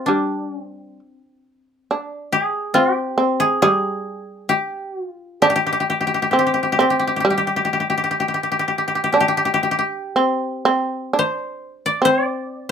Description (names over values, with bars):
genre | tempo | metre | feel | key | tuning
japanese traditional, Japanese chamber music | 56-70 BPM | 4/4 | rubato | G in sen | A4 = 440 Hz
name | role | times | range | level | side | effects
koto | melody | 0.0-12.7 s | D4 to D5 | -20 LUFS | left 2 dB | none
shamisen | second line | 0.0-12.7 s | G3 to D4 | -19 LUFS | right 1 dB | none
room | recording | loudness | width
light reverb | close, detailed microphones | -17 LUFS | side -7 dB against mid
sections
0.0-11.2 A section; 11.2-12.7 B section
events
none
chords
none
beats
| 0.09 1.00 1.88 2.75 | 3.61 4.49 5.41 6.33 | 7.27 8.20 9.15 10.17 | 11.16 12.05